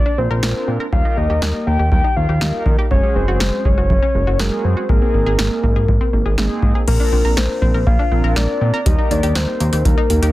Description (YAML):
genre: synth-pop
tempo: 121 BPM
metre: 4/4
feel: straight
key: Bb mixolydian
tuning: A4 = 435 Hz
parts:
  - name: soft octave-layered synth lead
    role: melody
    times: 0.0-10.3 s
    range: Bb4 to G5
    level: -22 LUFS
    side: left 2 dB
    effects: chorus, tape echo, plate reverb
  - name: analog pluck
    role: arpeggios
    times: 0.0-10.3 s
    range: Gb3 to Bb4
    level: -26 LUFS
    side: left 1 dB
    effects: chorus, tape echo, plate reverb
  - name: fat analog bass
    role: bass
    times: 0.0-10.3 s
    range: Gb1 to Eb3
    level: -18 LUFS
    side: equal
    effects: none
  - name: mellow synth brass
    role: accompaniment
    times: 0.4-10.3 s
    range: Ab3 to Bb4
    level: -25 LUFS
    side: right 1 dB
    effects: chorus, plate reverb
  - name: electro analog drum machine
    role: drums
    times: 0.4-10.3 s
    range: crash cymbal, hi-hat, kick drum, snare drum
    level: -18 LUFS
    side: equal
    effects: none
room: light reverb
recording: dense, heavily limited modern master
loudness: -14 LUFS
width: side -16 dB against mid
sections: 0.0-6.9 A section; 6.9-10.3 B section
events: none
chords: 0.0 Bbadd9; 0.9 Eb; 2.9 Gbsus2; 4.9 Abadd9; 6.9 Bbadd9; 8.9 Eb